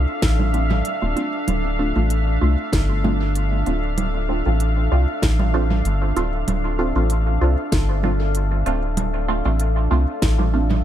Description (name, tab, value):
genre	ambient dub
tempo	96 BPM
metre	4/4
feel	swing 54% on 16ths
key	D minor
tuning	A4 = 440 Hz
part	deep dark ambient pad	sustained chords	0.0-10.8 s	D4 to F5	-26 LUFS	equal	chorus, built-in reverb
part	filtered dub chord stab	stabs	0.0-10.7 s	A3 to F4	-26 LUFS	right 2 dB	phaser, lush chorus, dub echo
part	soft dub sub bass	bass	0.0-10.8 s	D1 to C2	-20 LUFS	equal	none
part	electronic kick drum	drums	0.2-10.4 s	none	-24 LUFS	equal	none
part	organic electronic drum kit	drums	0.2-10.8 s	congas, hi-hat, snare drum	-27 LUFS	right 4 dB	overdrive, dub echo
room	little or no reverb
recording	none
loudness	-18 LUFS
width	side -11 dB against mid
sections	0.0-10.8 A section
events	none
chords	0.0 Dm7